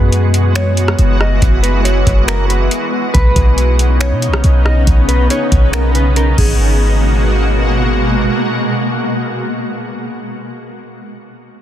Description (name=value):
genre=hip hop, atmospheric cloud-rap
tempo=139 BPM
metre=4/4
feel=half-time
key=G# minor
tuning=A4 = 440 Hz
part: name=mellow electric guitar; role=melody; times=0.0-7.9 s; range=G#4 to D#5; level=-22 LUFS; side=equal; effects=tape echo
part: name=shimmering ambient pad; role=sustained chords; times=0.0-9.8 s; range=B2 to F#4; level=-17 LUFS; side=equal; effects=chorus, built-in reverb, sidechain pumping
part: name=clean 808-style bass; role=bass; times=0.0-8.3 s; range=F#1 to B2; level=-13 LUFS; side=equal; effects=none
part: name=booming analog drum machine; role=drums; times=0.1-6.6 s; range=crash cymbal, finger snaps, hi-hat, kick drum, rim click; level=-15 LUFS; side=equal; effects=soft clipping on snare
room=little or no reverb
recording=dense, heavily limited modern master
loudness=-11 LUFS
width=side -11 dB against mid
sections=0.0-6.6 A section; 6.6-10.1 B section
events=none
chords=0.0 F#9sus4; 3.1 Badd9; 6.4 G#m9